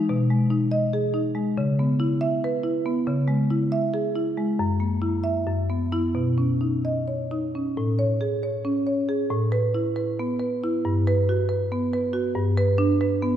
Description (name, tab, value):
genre	classical, contemporary piece for solo marimba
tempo	276 BPM (eighths)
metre	7/8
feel	rubato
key	B major, A major from 7.8 s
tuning	A4 = 441 Hz
part	marimba with medium mallets	solo	0.0-13.4 s	F#2 to E5	-21 LUFS	equal	none
room	wet church reverb, RT60 2.8 s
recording	minimal, uncompressed stereo recording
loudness	-22 LUFS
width	side -10 dB against mid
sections	0.0-7.8 A section; 7.8-13.4 B section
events	none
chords	0.1 B6; 1.6 C#m7; 3.1 E/C#; 4.6 F#7; 5.5 F#7sus4; 6.2 Badd9; 7.8 Amaj7; 9.3 Asus2; 10.8 Gmaj7; 12.4 Bm/G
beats	| 0.07 0.28 0.50 0.71 0.93 1.14 1.36 | 1.57 1.79 2.00 2.22 2.43 2.64 2.86 | 3.08 3.29 3.51 3.73 3.94 4.16 4.38 | 4.60 4.82 5.04 5.25 5.48 5.71 5.93 | 6.17 6.40 6.63 6.86 7.09 7.32 7.55 | 7.78 8.00 8.22 8.44 8.66 8.88 9.10 | 9.32 9.54 9.75 9.97 10.19 10.41 10.62 | 10.85 11.06 11.28 11.49 11.71 11.93 12.14 | 12.36 12.57 12.79 13.00 13.22